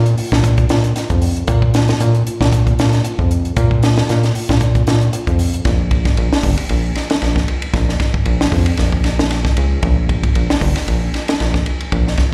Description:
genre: afrobeat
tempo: 115 BPM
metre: 4/4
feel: swing 55% on 16ths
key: Bb dorian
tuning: A4 = 439 Hz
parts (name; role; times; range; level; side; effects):
- rubbery square bass; bass; 0.0-12.2 s; G1 to Bb2; -17 LUFS; equal; none
- compact cocktail drum kit; drums; 0.1-12.3 s; hi-hat, kick drum, ride cymbal, snare drum; -20 LUFS; equal; none
room: little or no reverb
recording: live gig heard through the venue's PA, recital hall reverb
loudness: -16 LUFS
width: mono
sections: 0.0-5.7 A section; 5.7-12.3 B section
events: none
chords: none

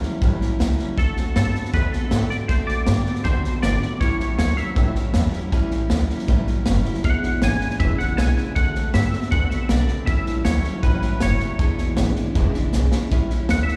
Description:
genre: rockabilly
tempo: 158 BPM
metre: 4/4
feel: straight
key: A mixolydian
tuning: A4 = 439 Hz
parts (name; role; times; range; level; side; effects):
- picked steel-string acoustic guitar; accompaniment; 0.0-13.8 s; E2 to F#4; -32 LUFS; equal; plate reverb, slapback echo
- electric guitar through a small old amp; riff; 0.0-13.1 s; E2 to B3; -33 LUFS; equal; slapback echo
- upright bass; bass; 0.0-13.7 s; E1 to A2; -25 LUFS; equal; none
- raw garage drum kit; drums; 0.0-13.7 s; hi-hat, kick drum, snare drum; -25 LUFS; equal; none
- twangy electric guitar; melody; 1.0-13.8 s; A4 to G#5; -30 LUFS; equal; analog chorus, slapback echo, tape echo
room: light reverb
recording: live gig heard through the venue's PA, recital hall reverb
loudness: -21 LUFS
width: mono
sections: 0.0-13.1 A section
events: drum fill 12.7-13.1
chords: 0.0 A7; 1.0 D7; 4.0 A7; 7.0 E7; 8.6 D7; 10.1 A7; 11.6 E7; 13.1 A7

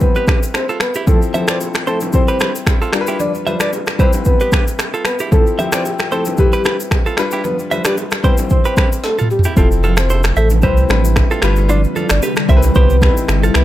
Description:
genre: afrobeats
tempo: 113 BPM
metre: 4/4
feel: swing 55% on 16ths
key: C major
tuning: A4 = 440 Hz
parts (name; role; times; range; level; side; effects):
- soft octave-layered synth lead; melody; 0.0-13.6 s; G4 to D5; -21 LUFS; left 1 dB; chorus, tremolo, tape echo
- warm grand piano; accompaniment; 0.0-13.6 s; F3 to C5; -22 LUFS; left 4 dB; none
- afro-pop drum kit; drums; 0.0-13.6 s; finger snaps, kick drum, rim click, shaker, snare drum, toms; -15 LUFS; equal; none
- congas and bongos; percussion; 0.0-13.4 s; none; -26 LUFS; right 3 dB; none
- direct-recorded clean electric guitar; riff; 0.2-13.6 s; C4 to E5; -22 LUFS; right 4 dB; tape echo
- ethereal airy pad; sustained chords; 10.1-13.6 s; C3 to F4; -22 LUFS; equal; ensemble chorus, built-in reverb
- warm sub bass; bass; 9.6-13.6 s; F1 to C2; -13 LUFS; equal; none
room: light reverb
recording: echo-heavy mix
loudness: -12 LUFS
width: side -14 dB against mid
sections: 0.0-9.6 A section; 9.6-13.6 B section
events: drum fill 9.0-9.6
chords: 0.0 Cmaj7; 1.1 Fmaj7; 2.1 Cmaj7; 2.9 G7; 4.0 Cmaj7; 5.3 Fmaj7; 6.4 Cmaj7; 7.2 G7; 8.2 Cmaj7; 9.6 Fmaj7; 10.6 Cmaj7; 11.4 G7; 12.5 Cmaj7

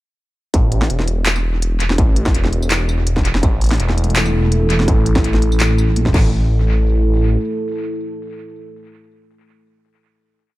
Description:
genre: half-time drum and bass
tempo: 166 BPM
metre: 4/4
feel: swing 54% on 16ths, half-time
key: unclear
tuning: A4 = 440 Hz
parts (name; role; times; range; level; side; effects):
- phased detuned saw bass; bass; 0.5-7.4 s; E1 to Bb1; -16 LUFS; equal; phaser
- electronic kick drum; drums; 0.5-6.2 s; none; -16 LUFS; equal; distortion, small room ambience
- industrial drum kit; drums; 0.5-6.2 s; crash cymbal, handclaps, hi-hat, snare drum, tambourine; -21 LUFS; equal; small room ambience, tape echo
- dark analog pad; sustained chords; 3.8-10.0 s; A3 to A4; -22 LUFS; equal; chorus, sidechain pumping
room: little or no reverb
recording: echo-heavy mix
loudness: -14 LUFS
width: side -17 dB against mid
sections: 0.5-6.3 drop; 6.3-9.2 final hit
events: drop 0.5-6.3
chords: 0.5 A5

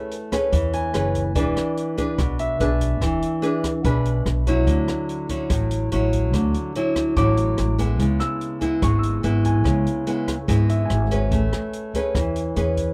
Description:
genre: bossa nova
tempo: 145 BPM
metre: 4/4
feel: straight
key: A major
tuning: A4 = 436 Hz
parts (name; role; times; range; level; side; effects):
- clear concert grand piano; accompaniment; 0.0-12.9 s; C#5 to E6; -33 LUFS; equal; none
- nylon-string guitar; accompaniment; 0.0-12.9 s; G#2 to B4; -25 LUFS; equal; none
- open jazz drum kit; drums; 0.1-12.9 s; hi-hat, kick drum, rim click; -30 LUFS; equal; none
- upright bass; bass; 0.5-12.9 s; E1 to E2; -24 LUFS; equal; none
room: little or no reverb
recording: dry, close 1970s-style studio recording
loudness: -22 LUFS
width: mono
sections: 0.0-12.9 A section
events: none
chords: 0.0 Amaj9; 1.4 E7; 4.7 Dmaj9; 8.0 C#m7; 11.3 Amaj9

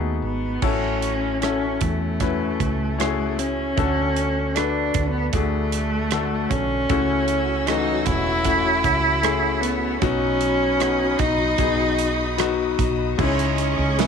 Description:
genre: pop ballad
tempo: 77 BPM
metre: 4/4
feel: straight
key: unclear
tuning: A4 = 440 Hz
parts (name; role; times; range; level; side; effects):
- rich cello; melody; 0.0-14.1 s; A3 to E4; -23 LUFS; right 2 dB; none
- bright concert grand piano; accompaniment; 0.0-14.1 s; A2 to B4; -25 LUFS; left 12 dB; none
- woody fretless electric bass; bass; 0.0-14.1 s; E1 to E2; -27 LUFS; right 2 dB; lush chorus
- modern studio drum kit; drums; 0.6-14.1 s; crash cymbal, hi-hat, kick drum, rim click, snare drum; -27 LUFS; right 6 dB; none
- warm studio string section; sustained chords; 6.9-14.1 s; F#4 to E6; -30 LUFS; left 1 dB; none
room: studio reverb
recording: 1960s-style stereo with parts hard left and right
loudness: -19 LUFS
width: side -6 dB against mid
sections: 0.6-13.2 A section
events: none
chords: 0.0 B7; 0.6 A6; 3.8 D; 6.9 A6; 10.0 B; 13.2 C#madd9

